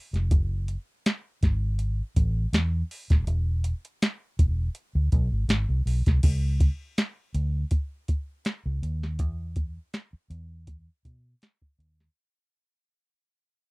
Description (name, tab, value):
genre	lush 1970s-style soul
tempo	81 BPM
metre	4/4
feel	swing 54% on 16ths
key	unclear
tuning	A4 = 437 Hz
part	vintage muted fingered electric bass	bass	0.1-12.1 s	D#1 to B2	-26 LUFS	equal	none
part	soft vintage rhythm box	drums	0.1-12.1 s	crash cymbal, hi-hat, kick drum, snare drum	-23 LUFS	equal	none
room	little or no reverb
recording	dry, close 1970s-style studio recording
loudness	-24 LUFS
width	side -27 dB against mid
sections	0.0-6.2 A section; 6.2-12.2 B section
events	fade-out 6.2-12.2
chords	none